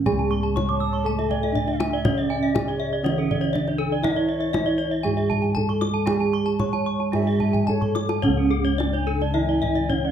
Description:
Balinese gamelan; 108-121 BPM; 4/4; straight; C# pelog; A4 = 438 Hz
gamelan-type bronze metallophone; melody; 0.0-10.1 s; C#4 to C#5; -26 LUFS; right 2 dB
gamelan-type bronze metallophone; accompaniment; 0.0-10.1 s; C#3 to A3-20c; -28 LUFS; right 3 dB
gamelan-type bossed gongs; bass; 0.0-10.1 s; C#2 to G#4-30c; -27 LUFS; left 2 dB
gamelan-type bronze metallophone; arpeggios; 0.1-10.0 s; G#4-30c to E6-30c; -30 LUFS; left 6 dB
kendang; percussion; 0.1-10.0 s; -29 LUFS; left 1 dB
gamelan-type bronze metallophone; arpeggios; 0.2-10.1 s; A4-20c to D6+20c; -31 LUFS; right 4 dB
breathy hollow bansuri; second line; 0.7-10.1 s; C#5 to A5; -33 LUFS; right 5 dB
moderate recital hall reverb, RT60 1.4 s; close, detailed microphones; -20 LUFS; side -9 dB against mid
0.1-8.2 A section; 8.2-10.1 B section
drum fill 7.5-8.2

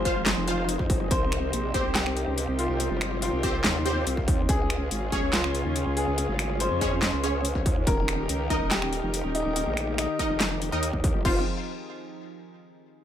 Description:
heavy wobble dubstep; 142 BPM; 4/4; half-time; F minor; A4 = 441 Hz
clear baby grand piano; melody; 0.0-11.4 s; Eb4 to C5; -32 LUFS; left 3 dB; ping-pong delay
lush unison pad; sustained chords; 0.0-11.4 s; C3 to Bb4; -33 LUFS; equal; chorus, sidechain pumping
supersaw stab; stabs; 0.0-11.4 s; C4 to F5; -32 LUFS; equal; lush chorus, ping-pong delay
growl bass; bass; 0.0-11.4 s; Eb1 to F2; -29 LUFS; equal; chorus, overdrive
dubstep drum kit; drums; 0.1-11.3 s; crash cymbal, finger snaps, handclaps, hi-hat, snare drum; -29 LUFS; equal
electronic kick drum; drums; 0.1-11.3 s; -28 LUFS; equal; distortion
light reverb; -23 LUFS; side -10 dB against mid
0.0-11.2 A section; 11.2-12.9 B section
drop 0.0-11.2
0.0 Fm7; 1.1 Cm; 4.5 Db; 7.9 Eb; 11.2 Fm7

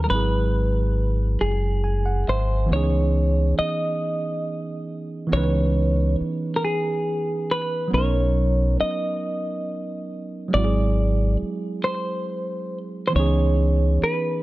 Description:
slow six-eight R&B; 46 BPM (dotted quarters); 6/8; straight; A4 = 437 Hz
semi-hollow electric guitar; melody; 0.0-14.4 s; G#4 to D#5; -26 LUFS; equal; slapback echo
tine electric piano; accompaniment; 0.0-14.4 s; E3 to G#5; -26 LUFS; right 3 dB
deep dub fingered electric bass; bass; 0.0-14.1 s; F#1 to C#2; -21 LUFS; equal
digital ambience; -20 LUFS; side -17 dB against mid
0.0-2.7 A section; 2.7-14.4 B section
tine electric piano fill 1.4-2.7
0.1 G#7alt; 2.7 C#m9; 7.9 Bmaj9; 10.5 G#aug7; 13.1 C#m9

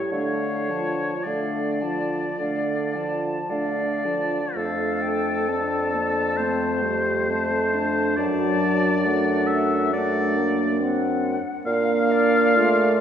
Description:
classical, slow romantic movement for wind quintet; 52-71 BPM; 4/4; rubato; D minor, F major from 4.6 s; A4 = 439 Hz
warm oboe; second line; 0.0-13.0 s; A4 to F5; -26 LUFS; left 2 dB
dark clarinet; accompaniment; 0.0-13.0 s; A3 to F4; -28 LUFS; right 2 dB
warm French horn; accompaniment; 0.0-13.0 s; F3 to D4; -28 LUFS; equal
concert flute; melody; 0.1-13.0 s; D5 to A5; -32 LUFS; left 4 dB
mellow bassoon; bass; 0.1-13.0 s; F2 to D3; -25 LUFS; right 1 dB
wet scoring stage reverb, RT60 1.9 s; heard from further back in the room; -20 LUFS; side -8 dB against mid
0.0-4.6 A section; 4.6-13.0 B section
0.1 Dm; 4.6 F; 8.2 D7/F#; 11.7 Bb

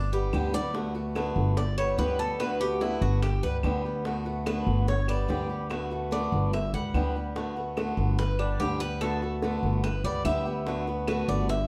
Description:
latin, Cuban son and guajira; 145 BPM; 4/4; straight; D major; A4 = 440 Hz
Cuban tres; arpeggios; 0.0-11.7 s; D4 to F#5; -35 LUFS; equal
upright bass; bass; 0.0-11.7 s; G1 to D2; -31 LUFS; equal
picked swing-style acoustic guitar; accompaniment; 0.1-11.5 s; D3 to G4; -34 LUFS; equal
maracas; percussion; 0.1-0.7 s; -51 LUFS; equal
bongos; percussion; 0.3-11.7 s; -40 LUFS; equal
claves; percussion; 0.3-11.3 s; -47 LUFS; equal
moderate large studio reverb, RT60 1.3 s; dark, warm production; -28 LUFS; mono
0.7-11.7 A section
drum fill 0.0-0.7; Cuban tres solo 0.7-11.7
0.0 G; 0.7 D6; 1.6 G; 2.4 D6; 3.2 G; 4.1 D6; 4.9 G; 5.7 D6; 6.5 G; 7.4 D6; 8.2 G; 9.0 D6; 9.8 G; 10.7 D6

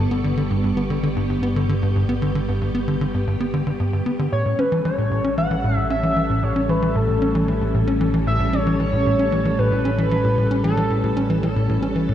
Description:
ambient, sequencer-driven space music; 114 BPM; 4/4; straight; A4 = 441 Hz
string machine, full ensemble; sustained chords; 0.0-12.1 s; G3 to A4; -25 LUFS; left 1 dB; ensemble chorus
tight sequencer bass; riff; 0.0-12.1 s; G2 to C#4; -22 LUFS; equal; tape echo
analog drone; bass; 0.0-12.1 s; G1 to A1; -25 LUFS; equal; chorus
wind-like tuned noise texture; texture; 0.0-4.3 s; C#6; -42 LUFS; right 7 dB; built-in reverb
pulse-width lead; melody; 4.3-11.1 s; A4 to F#5; -24 LUFS; equal; chorus, tape echo
moderate spring reverb, RT60 2.3 s; echo-heavy mix, cassette tape; -18 LUFS; side -10 dB against mid
0.0-4.3 A section; 4.3-12.1 B section
0.0 G; 4.3 A7

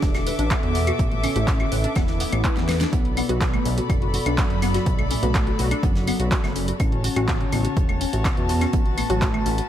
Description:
melodic techno; 124 BPM; 4/4; straight; B minor; A4 = 437 Hz
mellow synth brass; melody; 0.0-9.6 s; F#2 to E4; -29 LUFS; equal; chorus, sidechain pumping, tape echo
warm chamber string section; sustained chords; 0.0-9.7 s; F#4 to D6; -30 LUFS; left 1 dB; sidechain pumping
filtered dub chord stab; stabs; 0.0-9.7 s; A2 to F#4; -31 LUFS; equal; chorus, sidechain pumping, tape echo
fat analog bass; bass; 0.0-9.6 s; E1 to E2; -25 LUFS; equal; sidechain pumping
deep house drum kit; drums; 0.0-9.7 s; claves, handclaps, hi-hat, snare drum; -29 LUFS; equal; overdrive
electronic kick drum; drums; 0.0-9.3 s; -23 LUFS; equal; overdrive
tight metal drum kit; drums; 0.0-9.6 s; hi-hat, snare drum; -41 LUFS; right 3 dB
warbly dusty pluck; arpeggios; 0.1-9.7 s; A3 to B4; -29 LUFS; left 1 dB; ensemble chorus, sidechain pumping, tape echo
swell; sound effects; 2.1-2.9 s; -33 LUFS; left 7 dB
light reverb; -19 LUFS; side -11 dB against mid
0.0-9.7 A section
swell 2.1-2.9; drum fill 2.6-2.9
0.0 Asus4; 2.9 Bm7; 6.8 F#m

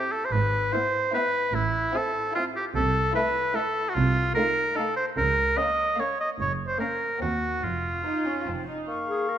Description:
cinematic, playful, whimsical film cue; 148 BPM; 3/4; straight; A minor, Bb minor from 4.0 s; A4 = 438 Hz
warm studio violin section; melody; 0.0-8.8 s; E5 to Bb5; -40 LUFS; left 5 dB
bright oboe; second line; 0.0-9.4 s; E4 to F5; -25 LUFS; right 1 dB
rich studio violin section; second line; 0.0-8.8 s; C4 to F4; -37 LUFS; left 3 dB
rich studio viola section; accompaniment; 0.0-8.9 s; A3 to Eb4; -35 LUFS; right 1 dB
dark studio double bass section; bass; 0.3-8.8 s; F1 to Eb2; -30 LUFS; right 2 dB
warm studio cello section; bass; 0.3-8.8 s; Eb2 to Db3; -35 LUFS; right 3 dB
bright silver concert flute; second line; 8.9-9.4 s; Db6; -32 LUFS; left 5 dB
warm bassoon; accompaniment; 8.9-9.4 s; Bb3; -34 LUFS; left 1 dB
clear clarinet; second line; 9.1-9.4 s; Ab4 to Bb4; -28 LUFS; left 3 dB
moderate scoring stage reverb, RT60 1.9 s; -23 LUFS; side -10 dB against mid
0.0-8.9 A section
0.3 E/G#; 1.5 Am; 2.8 Am/C; 5.2 Bbm/Db; 6.4 Gbmaj7; 7.2 Cdim/Eb; 7.6 Fsus4; 8.5 F; 8.9 Bbm

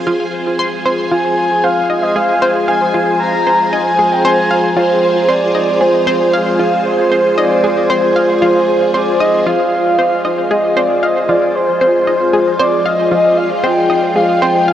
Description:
ambient, sequencer-driven space music; 115 BPM; 4/4; straight; A4 = 440 Hz
string machine, full ensemble; sustained chords; 0.0-14.7 s; F4 to C5; -16 LUFS; equal; ensemble chorus
bubbling stepped-filter texture; texture; 0.0-9.5 s; Ab5; -29 LUFS; right 2 dB; chorus, built-in reverb
analog pluck; riff; 0.1-14.7 s; F4 to C6; -18 LUFS; equal; chorus, vintage 12-bit sampler grit, tape echo
breathy flute-like synth lead; melody; 1.1-14.7 s; C5 to Bb5; -14 LUFS; equal; tremolo, lush chorus, tape echo
wet huge ambient reverb, RT60 8.5 s; worn, warbling old tape, cassette tape, warbly pitch drift; -11 LUFS; side -11 dB against mid
0.0-9.5 A section; 9.5-14.7 B section
0.0 Fm

